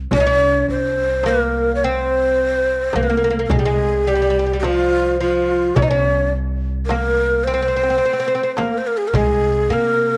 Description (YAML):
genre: Arabic maqam ensemble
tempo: 106 BPM (eighths)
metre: 10/8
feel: straight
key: C maqam bayati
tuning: A4 = 439 Hz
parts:
  - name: upright bass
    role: bass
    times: 0.0-10.2 s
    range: C2 to C3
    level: -26 LUFS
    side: equal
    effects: none
  - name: oud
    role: second line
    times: 0.1-10.2 s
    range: F3 to Eb4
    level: -25 LUFS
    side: equal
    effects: cassette tape
  - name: darbuka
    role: percussion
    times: 0.1-9.4 s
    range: none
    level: -28 LUFS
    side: equal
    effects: none
  - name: frame drum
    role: percussion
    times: 0.1-9.4 s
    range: none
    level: -26 LUFS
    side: equal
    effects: none
  - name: breathy mellow ney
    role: melody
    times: 0.2-10.2 s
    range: F4 to Eb5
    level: -20 LUFS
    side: equal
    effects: none
room: light reverb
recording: home recording on cassette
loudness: -18 LUFS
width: mono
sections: 0.1-10.2 A section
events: none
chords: none